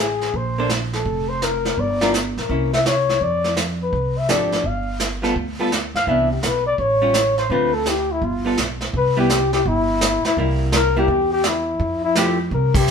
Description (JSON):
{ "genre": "jazz, small-group swing and bop", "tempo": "168 BPM", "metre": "4/4", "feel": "swing 65% on 8ths", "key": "C major", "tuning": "A4 = 440 Hz", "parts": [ { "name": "breathy flugelhorn", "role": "melody", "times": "0.0-12.9 s", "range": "E4 to F5", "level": "-20 LUFS", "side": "left 3 dB", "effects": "none" }, { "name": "upright bass", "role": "bass", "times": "0.0-12.9 s", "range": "F1 to G2", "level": "-24 LUFS", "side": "right 1 dB", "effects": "none" }, { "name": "vintage brush drum kit", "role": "drums", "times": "0.2-12.9 s", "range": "brushed snare drum, crash cymbal, hi-hat, kick drum, snare drum", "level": "-23 LUFS", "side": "right 2 dB", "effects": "none" }, { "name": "archtop guitar, miked and amplified", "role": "accompaniment", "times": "0.6-12.4 s", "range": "D3 to C5", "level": "-23 LUFS", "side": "right 1 dB", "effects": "none" } ], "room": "wet studio reverb, RT60 0.8 s", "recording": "band playing live in one room", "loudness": "-17 LUFS", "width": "side -6 dB against mid", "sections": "0.0-8.9 A section; 8.9-12.9 B section", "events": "band accent 12.7", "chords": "0.3 Bbmaj7sus2; 1.8 Gm7; 2.5 C7b9; 3.2 F69; 4.6 G9; 6.1 Cmaj9; 6.8 Aaug7; 7.5 Dm7; 8.2 G9; 8.9 C; 10.4 C7; 11.8 Fmaj9" }